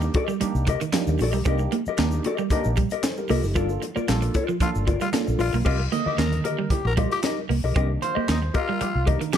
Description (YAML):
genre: funk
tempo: 114 BPM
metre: 4/4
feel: straight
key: C dorian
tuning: A4 = 440 Hz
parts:
  - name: mellow electric guitar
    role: accompaniment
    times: 0.0-9.4 s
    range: F4 to Eb5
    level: -29 LUFS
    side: left 7 dB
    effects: none
  - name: electric guitar at the edge of break-up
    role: riff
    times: 0.0-9.4 s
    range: Eb3 to C4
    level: -29 LUFS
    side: right 9 dB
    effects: wide subtle chorus
  - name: barky tine electric piano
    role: stabs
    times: 0.0-9.4 s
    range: D3 to Eb5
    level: -30 LUFS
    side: right 3 dB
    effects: phaser
  - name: vintage muted fingered electric bass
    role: bass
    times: 0.0-9.2 s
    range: F#1 to Eb2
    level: -25 LUFS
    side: equal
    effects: none
  - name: egg shaker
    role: percussion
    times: 0.0-5.7 s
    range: none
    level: -47 LUFS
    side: left 5 dB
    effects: none
  - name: tight funk drum kit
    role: drums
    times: 0.1-9.4 s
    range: crash cymbal, handclaps, hi-hat, kick drum, snare drum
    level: -26 LUFS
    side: equal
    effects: none
  - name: congas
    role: percussion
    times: 0.4-9.4 s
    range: none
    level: -36 LUFS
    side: right 6 dB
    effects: none
  - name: growling tenor saxophone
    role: second line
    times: 4.6-9.4 s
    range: Eb4 to Bb4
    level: -30 LUFS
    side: left 6 dB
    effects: none
room: light reverb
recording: dark, warm production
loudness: -21 LUFS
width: side -9 dB against mid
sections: 0.0-5.7 A section; 5.7-9.4 B section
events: band accent 3.6-5.7; tine electric piano solo 5.7-9.4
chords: 0.0 Cm7; 3.6 Gm7; 5.7 Cm7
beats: 0.41 0.93 | 1.46 1.98 2.51 3.03 | 3.56 4.08 4.61 5.13 | 5.66 6.19 6.71 7.24 | 7.76 8.29 8.81 9.34